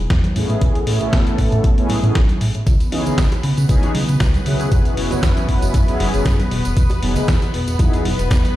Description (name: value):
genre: nu-disco, nu disco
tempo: 117 BPM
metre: 4/4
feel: swing 54% on 16ths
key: unclear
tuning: A4 = 440 Hz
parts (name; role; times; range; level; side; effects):
- chorused synth bass; bass; 0.0-8.5 s; E1 to C#3; -20 LUFS; equal; none
- dusty soul sampler-style drum kit; drums; 0.1-8.5 s; hi-hat, snare drum; -26 LUFS; equal; studio reverb
- electronic kick drum; drums; 0.1-8.4 s; none; -16 LUFS; equal; overdrive, studio reverb
- congas, tambourine and bongos; percussion; 0.2-8.5 s; none; -28 LUFS; right 2 dB; none
- mellow synth brass; accompaniment; 0.4-8.0 s; E3 to B4; -23 LUFS; equal; chorus, sidechain pumping, tape echo
- string machine, full ensemble; sustained chords; 2.7-8.6 s; B3 to B4; -26 LUFS; left 2 dB; phaser, ensemble chorus, sidechain pumping
room: light reverb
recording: played on a big sound system in a bare room, large studio reverb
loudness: -15 LUFS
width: side -14 dB against mid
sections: 0.0-8.6 A section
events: none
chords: 0.4 Amaj7; 2.7 C#m7; 4.7 F#9sus4; 6.5 Emaj7